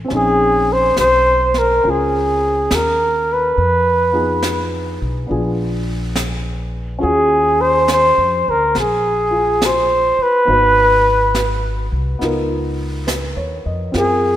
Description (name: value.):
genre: jazz ballad.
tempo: 69 BPM.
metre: 4/4.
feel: swing 66% on 8ths.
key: Bb minor.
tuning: A4 = 439 Hz.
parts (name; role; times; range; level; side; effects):
warm upright piano; accompaniment; 0.0-14.4 s; A3 to Eb5; -24 LUFS; equal; none.
upright bass; bass; 0.0-14.4 s; Ab1 to Gb2; -22 LUFS; equal; none.
jazz brush drum kit; drums; 0.1-14.4 s; brushed snare drum, hi-hat, snare drum; -25 LUFS; equal; none.
warm flugelhorn; melody; 0.2-14.4 s; Ab4 to C5; -14 LUFS; equal; none.
room: wet lush hall reverb, RT60 2.0 s.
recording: rough home demo mix.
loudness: -13 LUFS.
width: side -12 dB against mid.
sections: 0.1-14.4 A section.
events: none.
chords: 0.1 Bbm11; 3.6 Fm7b5; 5.3 Bb7b9; 7.0 Ebm11; 10.5 Abm7; 12.2 Db13.